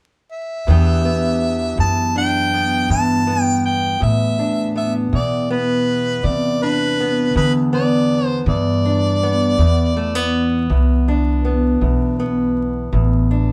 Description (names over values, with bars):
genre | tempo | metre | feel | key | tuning
acoustic country blues, solo or duo | 54 BPM (dotted quarters) | 12/8 | straight | E minor | A4 = 440 Hz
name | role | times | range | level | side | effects
warm harmonica | melody | 0.3-10.7 s | B4 to A5 | -23 LUFS | equal | none
fingerpicked steel-string acoustic guitar | accompaniment | 0.7-13.5 s | E2 to G4 | -22 LUFS | equal | none
upright bass | bass | 0.7-13.5 s | A1 to D3 | -21 LUFS | equal | none
room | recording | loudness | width
moderate studio ambience, RT60 0.5 s | band playing live in one room, vinyl crackle | -18 LUFS | mono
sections
0.7-13.5 A section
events
none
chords
0.0 N.C.; 0.7 Em7